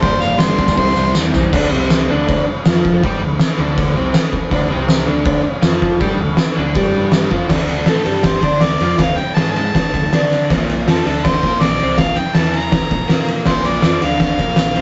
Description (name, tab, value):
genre	garage rock duo or trio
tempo	161 BPM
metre	4/4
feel	straight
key	D minor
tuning	A4 = 439 Hz
part	bright harmonica	melody	0.0-1.1, 7.9-14.8 s	A4 to C6	-22 LUFS	equal	overdrive
part	crunchy overdriven guitar	riff	0.0-14.8 s	G2 to D5	-21 LUFS	equal	none
part	fuzz fingered electric bass	bass	0.0-14.8 s	G1 to D3	-25 LUFS	equal	overdrive
part	oversized low-tuned drum kit	drums	0.0-14.8 s	crash cymbal, hi-hat, kick drum, ride cymbal, snare drum, toms	-18 LUFS	equal	none
part	tambourine	percussion	0.0-7.2, 13.8-14.7 s	none	-32 LUFS	equal	none
room	light reverb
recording	rough rehearsal-room recording, nothing above 7.8 kHz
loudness	-15 LUFS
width	mono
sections	0.0-1.5 A section; 1.5-7.5 B section; 7.5-14.8 C section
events	drum fill 1.2-1.5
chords	0.0 Gm; 0.8 C; 1.5 Dm; 10.5 Bb5